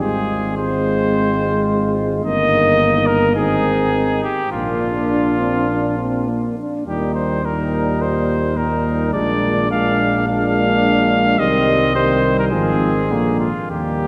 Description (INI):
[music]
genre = classical, brass quintet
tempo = 106 BPM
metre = 4/4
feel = rubato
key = unclear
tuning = A4 = 440 Hz
[part]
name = clear trumpet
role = melody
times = 0.0-14.1 s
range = F4 to F5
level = -23 LUFS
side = equal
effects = none
[part]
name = mellow trumpet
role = second line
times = 0.0-14.1 s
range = Bb3 to F4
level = -28 LUFS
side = equal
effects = none
[part]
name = mellow French horn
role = accompaniment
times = 0.0-14.1 s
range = F3 to D4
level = -25 LUFS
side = equal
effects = none
[part]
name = warm euphonium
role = accompaniment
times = 0.0-14.1 s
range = Bb2 to Ab3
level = -25 LUFS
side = equal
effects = none
[part]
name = mellow tuba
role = bass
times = 0.0-14.1 s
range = G1 to Eb2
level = -24 LUFS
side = equal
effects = none
[sound]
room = wet church reverb, RT60 3.7 s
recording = none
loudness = -18 LUFS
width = mono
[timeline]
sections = 0.0-14.1 A section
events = none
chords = 0.0 Fm/Ab; 2.2 Eb/G; 3.4 Ab; 4.5 Bb; 6.9 Eb; 9.1 Bb7; 11.4 Cm; 12.5 Fm7/Ab; 13.1 Bb7